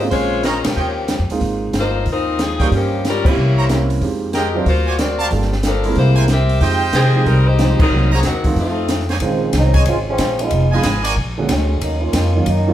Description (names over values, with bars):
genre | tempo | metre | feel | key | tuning
jazz, big band swing | 185 BPM | 4/4 | swing 64% on 8ths | F minor, Bb minor from 9.2 s | A4 = 440 Hz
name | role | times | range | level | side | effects
clear saxophone section | melody | 0.0-9.1 s | Eb3 to E5 | -20 LUFS | left 3 dB | none
warm grand piano | accompaniment | 0.0-12.7 s | D3 to C5 | -22 LUFS | right 4 dB | none
upright bass | bass | 0.0-12.7 s | F1 to C3 | -18 LUFS | equal | none
open jazz drum kit | drums | 0.1-12.6 s | crash cymbal, hi-hat, kick drum, ride cymbal, snare drum | -21 LUFS | equal | none
brilliant trumpet section | stabs | 0.4-11.1 s | Bb3 to Bb5 | -22 LUFS | right 3 dB | none
muted trombone section | second line | 9.2-12.7 s | Db3 to F4 | -20 LUFS | right 1 dB | none
room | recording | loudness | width
moderate large studio reverb, RT60 0.9 s | heard from further back in the room | -14 LUFS | side -12 dB against mid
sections
0.0-9.2 A section; 9.2-12.7 B section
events
band accent 0.6, 3.2, 7.8; trombone section solo 9.2-12.7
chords
0.1 Bbm9; 0.8 Eb9; 1.4 Ab69; 2.7 Gm7b5; 3.4 C7b9; 4.0 Fm9; 4.7 D7alt; 5.3 Gm9; 6.0 C7b13; 6.6 Fm9; 7.9 Cm7b5; 8.6 F7; 9.2 Bbm11; 10.5 Fm7b5; 11.2 Bb7alt; 11.8 Ebm7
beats
| 0.12 0.44 0.77 1.09 | 1.42 1.74 2.07 2.39 | 2.71 3.04 3.36 3.69 | 4.01 4.34 4.66 4.99 | 5.31 5.64 5.96 6.29 | 6.61 6.94 7.26 7.59 | 7.91 8.24 8.56 8.89 | 9.21 9.54 9.86 10.19 | 10.51 10.84 11.16 11.49 | 11.81 12.14 12.46